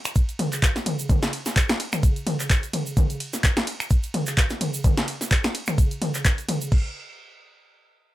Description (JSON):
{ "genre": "house", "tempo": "128 BPM", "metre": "4/4", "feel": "swing 56% on 16ths", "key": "none", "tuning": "none", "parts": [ { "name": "egg shaker", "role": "percussion", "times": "0.0-6.7 s", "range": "none", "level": "-35 LUFS", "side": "right 4 dB", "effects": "none" }, { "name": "punchy analog drum machine", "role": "drums", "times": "0.1-6.7 s", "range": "finger snaps, handclaps, hi-hat, ride cymbal, snare drum, toms", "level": "-24 LUFS", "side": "equal", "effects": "none" }, { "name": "clean 12-bit digital drum machine", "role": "drums", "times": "0.2-6.8 s", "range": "crash cymbal, kick drum", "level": "-20 LUFS", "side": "equal", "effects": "none" } ], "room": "little or no reverb", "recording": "none", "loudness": "-21 LUFS", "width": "side -16 dB against mid", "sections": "0.0-6.7 A section; 6.7-8.1 B section", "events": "drop 0.0-6.7", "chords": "none" }